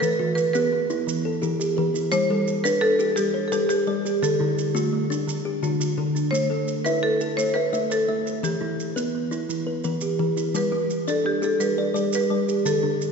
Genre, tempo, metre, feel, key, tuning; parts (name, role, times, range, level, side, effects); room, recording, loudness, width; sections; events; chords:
southern african traditional, mbira-style interlocking cycle; 114 BPM (dotted quarters); 12/8; straight; A equiheptatonic; A4 = 441 Hz
marimba with hard mallets; melody; 0.0-13.1 s; G4+29c to C5+43c; -24 LUFS; equal
kalimba; arpeggios; 0.0-13.1 s; D3 to E5; -26 LUFS; left 4 dB
kalimba; arpeggios; 0.0-13.1 s; D3 to E5; -28 LUFS; right 5 dB
maracas; percussion; 0.0-13.1 s; -36 LUFS; right 6 dB
wet church reverb, RT60 2.7 s; recorded in a church or concert hall, nothing above 7.7 kHz; -21 LUFS; side -5 dB against mid
0.0-6.3 A section; 6.3-13.1 A section
0.0 Em; 2.1 G; 4.2 D; 6.3 Am; 8.4 Em; 10.5 G